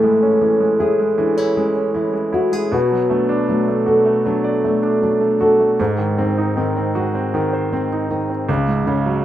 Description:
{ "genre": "pop ballad", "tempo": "78 BPM", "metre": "4/4", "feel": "straight", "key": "A major", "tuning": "A4 = 440 Hz", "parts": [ { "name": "bright concert grand piano", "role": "accompaniment", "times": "0.0-9.2 s", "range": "C#2 to D5", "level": "-21 LUFS", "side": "right 3 dB", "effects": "none" }, { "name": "nylon-string guitar", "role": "arpeggios", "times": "0.0-9.2 s", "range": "G#2 to A4", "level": "-17 LUFS", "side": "left 1 dB", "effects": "none" } ], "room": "wet studio reverb, RT60 0.6 s", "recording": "rough home demo mix", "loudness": "-15 LUFS", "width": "side -12 dB against mid", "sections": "0.0-9.2 A section", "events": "none", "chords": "0.0 Amaj7; 2.7 Bm7; 5.8 G#7; 8.5 C#sus4" }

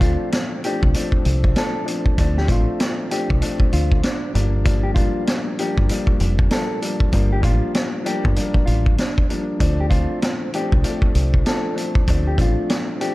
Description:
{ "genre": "hip hop, boom-bap hip-hop", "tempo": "97 BPM", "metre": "4/4", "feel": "swing 61% on 16ths", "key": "D minor", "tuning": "A4 = 440 Hz", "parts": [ { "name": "mellow electric guitar", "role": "melody", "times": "0.0-13.1 s", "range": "D4 to A4", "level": "-28 LUFS", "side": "equal", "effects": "high-pass filter, low-pass filter, analog delay" }, { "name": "dark upright piano", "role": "accompaniment", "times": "0.0-13.1 s", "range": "F3 to D4", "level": "-25 LUFS", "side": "left 2 dB", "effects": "cassette tape, high-pass filter, low-pass filter" }, { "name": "deep dub fingered electric bass", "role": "bass", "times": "0.0-12.6 s", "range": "F1 to D2", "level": "-20 LUFS", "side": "equal", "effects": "none" }, { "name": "vintage drum kit", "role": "drums", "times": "0.0-13.1 s", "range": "hi-hat, kick drum, snare drum", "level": "-20 LUFS", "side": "equal", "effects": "none" } ], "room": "studio ambience", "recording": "dark, warm production, lossy compression artefacts", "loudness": "-17 LUFS", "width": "side -19 dB against mid", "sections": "0.0-13.1 A section", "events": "none", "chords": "0.0 Dm7; 4.3 Gm7; 9.6 Dm7" }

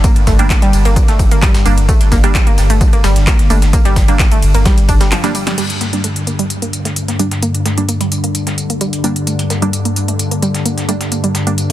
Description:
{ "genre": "driving peak-time techno", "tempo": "130 BPM", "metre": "4/4", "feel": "straight", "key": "G minor", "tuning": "A4 = 440 Hz", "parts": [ { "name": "wide unison pluck", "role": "riff", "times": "0.0-11.7 s", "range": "F3 to D4", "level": "-20 LUFS", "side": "right 1 dB", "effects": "sidechain pumping, digital delay" }, { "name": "saturated sub bass", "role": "bass", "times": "0.0-5.1 s", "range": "G1", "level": "-14 LUFS", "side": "equal", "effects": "overdrive, sidechain pumping, low-pass filter" }, { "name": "deep dark ambient pad", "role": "drone", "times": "0.0-11.7 s", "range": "G2 to D3", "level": "-19 LUFS", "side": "left 1 dB", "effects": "chorus, built-in reverb, sidechain pumping" }, { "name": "breakbeat sampler-style drum kit", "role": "drums", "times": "0.0-11.7 s", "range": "hi-hat, snare drum, tambourine", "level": "-27 LUFS", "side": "equal", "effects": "soft clipping on snare, high-pass filter on snare, low-pass filter on snare, sidechain pumping on perc, high-pass filter on perc, low-pass filter on perc, sidechain pumping on hats, high-pass filter on hats, low-pass filter on hats, high-pass filter on room, low-pass filter on room" }, { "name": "electronic kick drum", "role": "drums", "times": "0.0-5.0 s", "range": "none", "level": "-12 LUFS", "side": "equal", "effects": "none" }, { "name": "techno drum kit", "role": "drums", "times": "0.0-11.7 s", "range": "crash cymbal, handclaps, hi-hat, ride cymbal, snare drum", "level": "-21 LUFS", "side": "equal", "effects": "sidechain pumping on hats, sidechain pumping on cymbals" }, { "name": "wavetable chord stab", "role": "stabs", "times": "0.4-11.5 s", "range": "G3 to D4", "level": "-23 LUFS", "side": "right 4 dB", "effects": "cassette tape, sidechain pumping, digital delay" } ], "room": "digital ambience", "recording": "dense, heavily limited modern master", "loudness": "-11 LUFS", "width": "side -14 dB against mid", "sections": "0.0-5.6 A section; 5.6-11.7 B section", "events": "drop 0.0-5.6; break 5.1-5.6; drum fill 5.1-5.6; band accent 5.5; filter sweep on synth arpeggio sound 5.6-11.7", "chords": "0.0 Gm" }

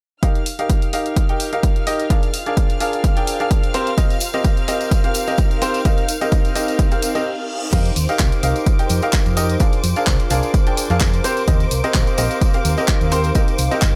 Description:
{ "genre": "piano house", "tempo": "128 BPM", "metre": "4/4", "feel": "swing 54% on 16ths", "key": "unclear", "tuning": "A4 = 439 Hz", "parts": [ { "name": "warm studio string section", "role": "sustained chords", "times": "0.2-14.0 s", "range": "C5 to F6", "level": "-32 LUFS", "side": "equal", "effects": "sidechain pumping" }, { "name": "clear grand piano", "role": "riff", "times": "0.2-14.0 s", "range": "C4 to G5", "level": "-24 LUFS", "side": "equal", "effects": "sidechain pumping, low-pass filter, tape echo" }, { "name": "electronic kick drum", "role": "drums", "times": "0.2-13.9 s", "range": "none", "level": "-19 LUFS", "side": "equal", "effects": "none" }, { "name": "house drum kit", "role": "drums", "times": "0.2-13.9 s", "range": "crash cymbal, handclaps, hi-hat", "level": "-28 LUFS", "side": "equal", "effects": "none" }, { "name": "granular cloud pad", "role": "texture", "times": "2.3-14.0 s", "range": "C4 to C6", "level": "-32 LUFS", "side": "equal", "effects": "built-in reverb, sidechain pumping" }, { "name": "tambourine", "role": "percussion", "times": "4.0-13.9 s", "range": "none", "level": "-34 LUFS", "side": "equal", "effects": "none" }, { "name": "reverse cymbal", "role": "sound effects", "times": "7.1-7.7 s", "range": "none", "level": "-34 LUFS", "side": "equal", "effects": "none" }, { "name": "hollow-body short-scale fingered electric bass", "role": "bass", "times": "7.7-13.9 s", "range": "G1 to F2", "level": "-22 LUFS", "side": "equal", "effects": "sidechain pumping" } ], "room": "little or no reverb", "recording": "none", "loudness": "-18 LUFS", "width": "mono", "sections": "0.2-7.7 A section; 7.7-14.0 B section", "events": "fade-in on ambient pad 0.2-7.7; reverse cymbal 7.1-7.7; break 7.3-7.7", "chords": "0.2 F9sus4; 2.1 Bb7; 3.7 Eb6; 5.9 Cm7; 9.6 Bb7; 11.2 Eb6; 13.4 Cm7" }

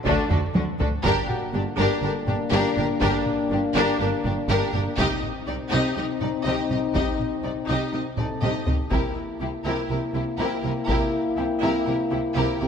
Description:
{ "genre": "cinematic, hybrid orchestral and electronic film score", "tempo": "122 BPM", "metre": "4/4", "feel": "straight", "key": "G harmonic minor", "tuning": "A4 = 440 Hz", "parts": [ { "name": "felt-muted upright piano", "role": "texture", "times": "0.0-12.7 s", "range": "F#4 to Bb5", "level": "-39 LUFS", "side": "left 1 dB", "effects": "none" }, { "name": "warm symphonic violin section", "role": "melody", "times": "0.1-12.7 s", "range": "D4 to Eb5", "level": "-30 LUFS", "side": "left 4 dB", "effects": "none" }, { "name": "warm symphonic violin section", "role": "second line", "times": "0.1-12.7 s", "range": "A3 to G4", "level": "-31 LUFS", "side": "left 2 dB", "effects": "none" }, { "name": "rich studio viola section", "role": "accompaniment", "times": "0.1-12.7 s", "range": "D4 to E4", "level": "-31 LUFS", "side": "right 1 dB", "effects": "none" }, { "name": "mellow French horn section", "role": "sustained chords", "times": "0.1-12.7 s", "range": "A3 to F#4", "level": "-28 LUFS", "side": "left 4 dB", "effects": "none" }, { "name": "clear symphonic cello section", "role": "bass", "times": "0.1-12.7 s", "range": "G2 to D3", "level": "-30 LUFS", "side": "right 3 dB", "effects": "none" }, { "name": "clear symphonic double bass section", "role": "bass", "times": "0.1-12.7 s", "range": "G1 to D2", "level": "-31 LUFS", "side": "right 4 dB", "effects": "none" }, { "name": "taiko ensemble", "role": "drums", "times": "0.1-11.3 s", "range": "none", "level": "-27 LUFS", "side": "equal", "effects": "none" } ], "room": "moderate scoring stage reverb, RT60 2.0 s", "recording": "none", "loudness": "-22 LUFS", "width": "side -7 dB against mid", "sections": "0.0-1.0 A section; 1.0-12.7 B section", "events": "drum fill 0.3-1.0, 8.2-8.9", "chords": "0.0 D; 1.0 Gm; 5.0 Cm; 8.9 C7" }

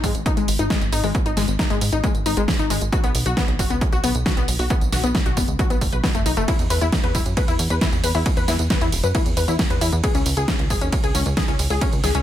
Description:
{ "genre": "uplifting trance", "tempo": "135 BPM", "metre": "4/4", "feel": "straight", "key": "C# minor", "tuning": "A4 = 439 Hz", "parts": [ { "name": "wide unison pluck", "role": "arpeggios", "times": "0.0-12.2 s", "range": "B2 to B4", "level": "-24 LUFS", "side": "left 4 dB", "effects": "sidechain pumping, dub echo" }, { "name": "plucky analog bass", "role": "bass", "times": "0.0-12.2 s", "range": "E1 to G#2", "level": "-23 LUFS", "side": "equal", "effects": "sidechain pumping" }, { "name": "big-room dance drum kit", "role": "drums", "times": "0.0-12.2 s", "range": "hi-hat, ride cymbal, snare drum, tambourine", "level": "-25 LUFS", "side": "right 1 dB", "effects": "sidechain pumping on hats, small room ambience, sidechain pumping on perc, sidechain pumping on cymbals" }, { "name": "electronic kick drum", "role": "drums", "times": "0.0-11.9 s", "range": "none", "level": "-22 LUFS", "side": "equal", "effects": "overdrive, small room ambience" } ], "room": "little or no reverb", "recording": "none", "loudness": "-18 LUFS", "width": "side -11 dB against mid", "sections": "0.0-12.2 A section", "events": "none", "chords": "0.0 G#5; 2.9 B5; 6.5 E5; 10.0 C#5" }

